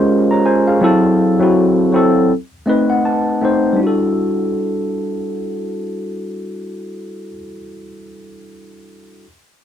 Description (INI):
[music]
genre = R&B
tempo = 81 BPM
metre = 4/4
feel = swing 58% on 16ths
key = unclear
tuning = A4 = 440 Hz
[part]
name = bright tine electric piano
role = accompaniment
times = 0.0-9.3 s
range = F#3 to A#5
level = -14 LUFS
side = equal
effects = overdrive, lush chorus
[sound]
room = little or no reverb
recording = dry, close 1970s-style studio recording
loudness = -13 LUFS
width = side -9 dB against mid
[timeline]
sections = 0.0-3.8 A section; 3.8-6.7 B section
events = tine electric piano fill 2.3-3.8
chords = 0.0 C#6; 0.8 F#m7b5; 2.3 B7b9; 3.8 Em11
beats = 0.08 | 0.82 1.56 2.30 3.04 | 3.79 4.53 5.27 6.01